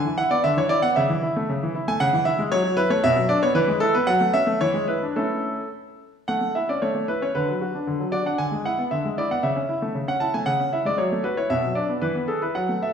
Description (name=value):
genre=classical-period piano sonatina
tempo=115 BPM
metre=2/4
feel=rubato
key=A major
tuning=A4 = 440 Hz
part: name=clear concert grand piano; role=solo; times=0.0-12.9 s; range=B2 to A5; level=-20 LUFS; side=equal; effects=none
room=wet recital hall reverb, RT60 1.4 s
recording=heard from further back in the room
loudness=-20 LUFS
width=side -7 dB against mid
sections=0.0-6.3 A section; 6.3-12.9 B section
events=none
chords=0.0 E5; 1.0 A/C#; 2.0 C#m; 2.5 F#m7; 3.0 Bm; 3.5 E; 4.1 F#m; 4.6 E7; 5.2 A; 7.3 Bm/D; 8.4 E7/D; 9.4 A/C#; 10.5 C#m; 11.0 F#m7; 11.5 Bm; 12.0 E